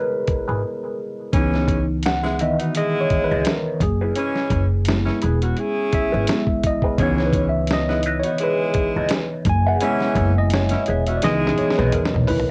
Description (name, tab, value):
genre	R&B, neo-soul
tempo	85 BPM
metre	4/4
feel	swing 55% on 16ths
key	C# minor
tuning	A4 = 437 Hz
part	tine electric piano	accompaniment	0.0-12.5 s	D#3 to G#5	-25 LUFS	equal	phaser, plate reverb
part	upright bass	bass	0.3-12.5 s	E1 to C#2	-25 LUFS	equal	none
part	dusty soul sampler-style drum kit	drums	0.3-12.5 s	hi-hat, kick drum, snare drum, toms	-26 LUFS	equal	cassette tape
part	electric guitar through a small old amp	second line	0.5-11.9 s	E4 to E5	-31 LUFS	equal	wah, phaser, tape echo, plate reverb
part	warm saxophone section	stabs	1.3-12.1 s	E3 to G#4	-27 LUFS	equal	none
room	moderate studio ambience, RT60 0.5 s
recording	home recording on cassette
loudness	-20 LUFS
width	mono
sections	0.0-12.5 A section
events	tine electric piano solo 0.0-12.5; break 0.6-1.3; drum fill 11.2-12.5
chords	0.0 F#9sus4 (rootless); 1.3 C#m9; 3.8 F#9sus4; 7.0 C#m9; 9.5 F#9sus4; 11.2 C#m9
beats	0.63 | 1.34 2.04 2.75 3.45 | 4.16 4.87 5.57 6.28 | 6.98 7.69 8.39 9.10 | 9.81 10.51 11.22 11.92